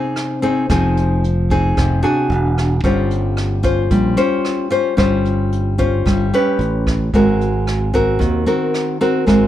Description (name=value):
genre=bossa nova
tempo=112 BPM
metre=4/4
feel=straight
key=unclear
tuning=A4 = 441 Hz
part: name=nylon-string guitar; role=accompaniment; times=0.0-9.5 s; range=C3 to C5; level=-16 LUFS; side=left 1 dB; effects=none
part: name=vintage brush drum kit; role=drums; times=0.2-9.4 s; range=hi-hat, kick drum, rim click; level=-23 LUFS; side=right 1 dB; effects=none
part: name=modern bright fingered electric bass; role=bass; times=0.7-9.5 s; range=E1 to Eb2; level=-18 LUFS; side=right 1 dB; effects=none
room=little or no reverb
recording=dark, warm production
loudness=-14 LUFS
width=side -12 dB against mid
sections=0.0-9.5 A section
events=none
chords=0.0 Fm7; 2.3 E9; 2.8 Bbm69/G (rootless); 6.6 A9; 7.1 Ab9